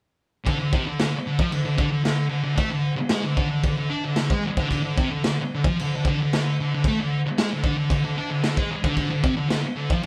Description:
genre	garage rock duo or trio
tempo	113 BPM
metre	4/4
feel	straight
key	unclear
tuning	A4 = 435 Hz
part	thick fuzz guitar	riff	0.5-10.1 s	C3 to D4	-26 LUFS	equal	distortion
part	raw garage drum kit	drums	0.5-10.1 s	crash cymbal, kick drum, snare drum	-27 LUFS	equal	none
room	moderate large studio reverb, RT60 1.0 s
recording	band playing live in one room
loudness	-24 LUFS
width	mono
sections	0.5-10.1 A section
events	none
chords	none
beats	| 0.46 0.98 1.51 2.04 | 2.57 3.10 3.64 4.17 | 4.70 5.23 5.76 6.30 | 6.83 7.36 7.89 8.43 | 8.96 9.49 10.02

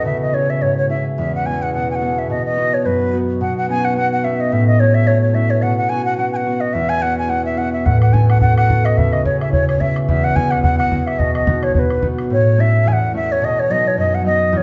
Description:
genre	celtic folk, Celtic reel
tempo	216 BPM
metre	4/4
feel	swing 56% on 8ths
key	B mixolydian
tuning	A4 = 440 Hz
part	wooden flute	melody	0.0-14.6 s	B4 to G#5	-21 LUFS	equal	plate reverb
part	concert harp	accompaniment	0.0-14.6 s	E2 to B4	-20 LUFS	equal	none
part	pedal harmonium	drone	0.0-12.3 s	B2	-27 LUFS	equal	none
part	bodhran	percussion	7.9-12.2 s	none	-21 LUFS	equal	none
room	wet studio reverb, RT60 0.9 s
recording	heard from further back in the room, nothing above 7.7 kHz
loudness	-17 LUFS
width	mono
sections	0.0-3.4 A section; 3.4-12.3 A section; 12.3-14.6 B section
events	none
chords	0.1 C#m; 1.2 E; 2.3 B; 3.4 Badd9; 4.5 A; 5.6 Bsus2; 6.8 E; 7.9 A; 9.0 C#m; 10.1 E; 11.2 B; 12.3 A; 13.4 B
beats	| 0.06 0.34 0.62 0.90 | 1.18 1.46 1.74 2.02 | 2.30 2.58 2.86 3.14 | 3.42 3.69 3.97 4.25 | 4.53 4.81 5.08 5.36 | 5.64 5.92 6.20 6.47 | 6.75 7.03 7.30 7.58 | 7.86 8.14 8.42 8.70 | 8.97 9.25 9.53 9.81 | 10.09 10.36 10.64 10.92 | 11.20 11.48 11.75 12.03 | 12.31 12.59 12.86 13.14 | 13.42 13.70 13.97 14.25 | 14.53

